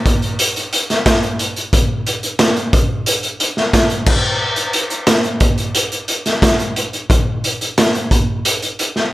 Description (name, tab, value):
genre	rock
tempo	89 BPM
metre	4/4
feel	straight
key	none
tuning	none
part	raw garage drum kit	drums	0.1-9.0 s	crash cymbal, hi-hat, kick drum, snare drum	-14 LUFS	equal	none
room	light reverb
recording	none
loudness	-14 LUFS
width	side -17 dB against mid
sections	0.0-9.1 A section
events	none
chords	none